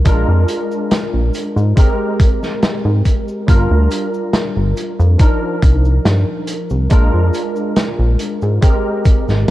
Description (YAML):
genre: vaporwave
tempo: 70 BPM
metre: 4/4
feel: swing 53% on 16ths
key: unclear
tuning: A4 = 440 Hz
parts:
  - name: barky tine electric piano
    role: accompaniment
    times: 0.0-9.5 s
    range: F3 to Bb4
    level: -20 LUFS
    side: equal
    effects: ensemble chorus, tape echo
  - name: chorused synth bass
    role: bass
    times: 0.0-9.5 s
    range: G1 to Ab2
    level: -13 LUFS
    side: equal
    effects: none
  - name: electronic kick drum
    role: drums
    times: 0.1-9.2 s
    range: none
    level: -12 LUFS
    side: equal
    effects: overdrive
  - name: vintage drum kit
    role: drums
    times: 0.1-9.5 s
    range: cabasa, hi-hat, snare drum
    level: -20 LUFS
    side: equal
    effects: none
room: studio reverb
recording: dark, warm production, cassette tape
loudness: -13 LUFS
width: side -15 dB against mid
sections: 0.0-9.5 A section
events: none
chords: 0.1 Bb7; 1.8 Abmaj9; 3.5 Gm7; 5.2 Cm11; 6.9 Bb7; 8.6 Abmaj9